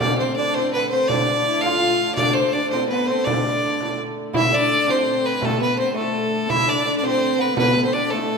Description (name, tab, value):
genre	medieval dance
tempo	111 BPM (dotted quarters)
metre	6/8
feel	straight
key	D dorian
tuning	A4 = 440 Hz
part	clear fiddle	melody	0.0-8.4 s	A4 to F5	-21 LUFS	right 1 dB	none
part	lute	second line	0.0-8.4 s	A3 to F4	-26 LUFS	right 1 dB	none
part	warm viola da gamba	second line	0.0-8.4 s	A3 to F4	-25 LUFS	left 4 dB	none
part	dark hurdy-gurdy	drone	0.0-8.4 s	D3 to A3	-30 LUFS	equal	none
part	frame drum	percussion	0.0-8.3 s	none	-27 LUFS	right 2 dB	none
room	wet scoring stage reverb, RT60 1.8 s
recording	minimal, uncompressed stereo recording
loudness	-18 LUFS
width	side -5 dB against mid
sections	0.0-4.3 A section; 4.3-8.4 B section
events	none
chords	none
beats	| 0.01 0.55 | 1.09 1.64 | 2.18 2.72 | 3.26 3.80 | 4.34 4.88 | 5.42 5.96 | 6.50 7.04 | 7.57 8.11